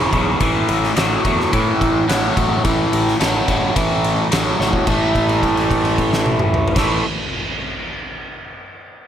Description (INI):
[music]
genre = blues rock power trio and southern rock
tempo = 108 BPM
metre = 4/4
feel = straight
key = unclear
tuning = A4 = 439 Hz
[part]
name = crunchy overdriven guitar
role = riff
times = 0.0-7.0 s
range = E2 to A3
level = -17 LUFS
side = equal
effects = phaser
[part]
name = fuzz picked electric bass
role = bass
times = 0.0-7.0 s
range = A1 to A2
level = -22 LUFS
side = equal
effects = overdrive
[part]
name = oversized low-tuned drum kit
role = drums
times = 0.1-6.9 s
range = crash cymbal, kick drum, ride cymbal, snare drum, toms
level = -21 LUFS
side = equal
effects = none
[sound]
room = light reverb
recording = none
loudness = -15 LUFS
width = side -9 dB against mid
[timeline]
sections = 0.0-4.9 A section; 4.9-7.1 B section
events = drum fill 4.6; held note 4.9-6.8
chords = 0.4 A5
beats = | 0.41 0.97 1.53 2.09 | 2.65 3.20 3.76 4.32 | 4.87 5.43 5.99 6.54